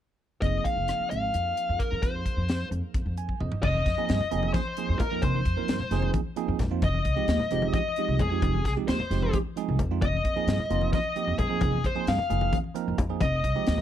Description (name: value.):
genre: electric jazz fusion.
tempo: 263 BPM (eighths).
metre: 7/8.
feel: straight.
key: unclear.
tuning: A4 = 441 Hz.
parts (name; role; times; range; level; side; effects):
bluesy overdriven lead guitar; melody; 0.4-13.8 s; Ab4 to F5; -30 LUFS; left 3 dB; distortion.
barky tine electric piano; accompaniment; 0.4-13.8 s; F3 to Ab5; -32 LUFS; right 13 dB; phaser.
upright bass; bass; 0.4-13.8 s; F1 to G2; -28 LUFS; equal; none.
crisp fusion drum kit; drums; 0.4-13.8 s; crash cymbal, hi-hat, kick drum, rim click, snare drum, toms; -30 LUFS; equal; none.
crunchy overdriven guitar; second line; 3.6-13.8 s; Ab4 to F5; -35 LUFS; left 1 dB; none.
congas; percussion; 3.6-13.8 s; none; -34 LUFS; left 4 dB; none.
room: studio ambience.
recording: dry, close 1970s-style studio recording.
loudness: -24 LUFS.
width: side -10 dB against mid.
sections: 0.4-3.6 A section; 3.6-13.8 B section.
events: tine electric piano fill 2.9-3.6; drum fill 3.3-3.6.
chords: 0.4 Bb9sus4/F; 6.8 Fm9; 10.0 Bb9sus4/F.